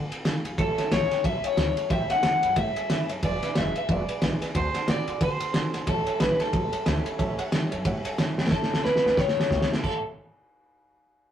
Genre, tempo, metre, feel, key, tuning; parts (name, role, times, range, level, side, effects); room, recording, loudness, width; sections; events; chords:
rockabilly; 182 BPM; 4/4; swing 59% on 8ths; A mixolydian; A4 = 440 Hz
picked steel-string acoustic guitar; accompaniment; 0.0-10.0 s; A2 to B4; -38 LUFS; equal
upright bass; bass; 0.0-10.0 s; E1 to D3; -33 LUFS; equal
cloth-damped thuddy drum kit; drums; 0.1-9.9 s; crash cymbal, kick drum, ride cymbal, snare drum; -26 LUFS; equal
electric guitar through a small old amp; melody; 0.6-10.0 s; A4 to F#5; -26 LUFS; left 1 dB
honky-tonk upright piano; accompaniment; 0.6-10.0 s; B4 to C6; -36 LUFS; right 2 dB
moderate small room reverb, RT60 0.5 s; rough rehearsal-room recording, tube saturation; -23 LUFS; side -10 dB against mid
0.0-8.5 A section; 8.5-9.8 B section; 9.8-11.2 C section
drum fill 8.4, 8.5-9.8
0.0 Dm7; 0.6 A7; 3.2 E7; 4.6 D7; 5.9 A7